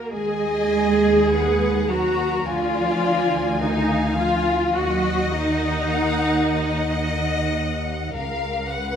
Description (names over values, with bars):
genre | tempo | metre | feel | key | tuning
classical, slow romantic movement for string orchestra | 48-55 BPM | 4/4 | rubato | Eb minor | A4 = 439 Hz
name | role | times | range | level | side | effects
warm symphonic violin section | second line | 0.0-9.0 s | Gb4 to Gb5 | -29 LUFS | left 3 dB | none
clear symphonic viola section | accompaniment | 0.0-7.6 s | Eb4 to Ab4 | -21 LUFS | equal | none
clear symphonic cello section | bass | 0.0-7.6 s | Eb3 to Ab3 | -27 LUFS | right 5 dB | none
rich studio violin section | melody | 0.1-9.0 s | F5 to Bb5 | -30 LUFS | left 4 dB | none
rich symphonic double bass section | bass | 0.1-9.0 s | Db2 to Eb2 | -27 LUFS | right 1 dB | none
room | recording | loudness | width
moderate scoring stage reverb, RT60 1.6 s | none | -19 LUFS | side -8 dB against mid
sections
0.1-9.0 A section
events
none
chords
0.1 Ebm; 2.5 Ddim; 4.8 Ebm